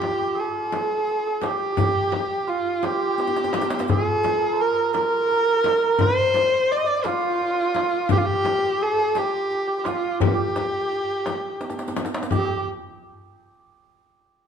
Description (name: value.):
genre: Persian modal ensemble.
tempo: 57 BPM (dotted quarters).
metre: 6/8.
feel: straight.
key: G dastgah shur.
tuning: A4 = 440 Hz.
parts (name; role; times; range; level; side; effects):
rich kamancheh; melody; 0.0-12.6 s; F4 to Eb5; -22 LUFS; equal; none.
santur; second line; 0.0-12.6 s; Eb4 to D5; -28 LUFS; right 6 dB; none.
frame drum; percussion; 0.0-12.6 s; none; -28 LUFS; left 5 dB; none.
tombak; percussion; 0.0-12.6 s; none; -29 LUFS; left 1 dB; none.
riq; percussion; 0.7-12.6 s; none; -37 LUFS; right 3 dB; none.
room: moderate recital hall reverb, RT60 1.4 s.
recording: minimal, uncompressed stereo recording, lossy compression artefacts.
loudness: -20 LUFS.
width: side -7 dB against mid.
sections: 0.0-12.3 A section; 12.3-14.4 B section.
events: drum fill 3.2-3.9, 11.6-12.3.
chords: none.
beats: 0.73 | 1.78 2.83 | 3.89 4.94 | 6.00 7.05 | 8.10 9.15 | 10.21 11.26 | 12.31.